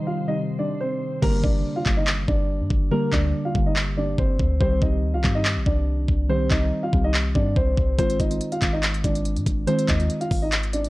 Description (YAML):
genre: hip hop, trap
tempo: 142 BPM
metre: 4/4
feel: half-time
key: G phrygian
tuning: A4 = 440 Hz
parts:
  - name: dark concert grand piano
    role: melody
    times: 0.0-10.9 s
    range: Bb3 to F5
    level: -27 LUFS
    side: equal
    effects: low-pass filter, analog delay
  - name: muted felt-like synth keys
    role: accompaniment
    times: 0.0-10.9 s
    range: D3 to G4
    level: -27 LUFS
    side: equal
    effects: chorus, low-pass filter
  - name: glassy FM pad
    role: sustained chords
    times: 0.0-1.2 s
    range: C3 to C5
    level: -34 LUFS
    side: equal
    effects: ensemble chorus, built-in reverb, low-pass filter
  - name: clean 808-style bass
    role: bass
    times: 1.2-10.9 s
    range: G1 to Ab2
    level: -24 LUFS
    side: equal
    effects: none
  - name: trap drum kit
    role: drums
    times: 1.2-10.9 s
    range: crash cymbal, handclaps, hi-hat, kick drum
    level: -23 LUFS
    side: equal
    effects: overdrive, vintage 12-bit sampler grit
room: digital ambience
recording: dry, gritty hardware recording, cassette tape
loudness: -20 LUFS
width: side -19 dB against mid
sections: 0.0-1.2 A section; 1.2-10.9 B section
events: hi-hats muted 1.2-8.0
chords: 0.0 Cm; 1.2 Gm; 4.6 Cm; 8.0 Ab6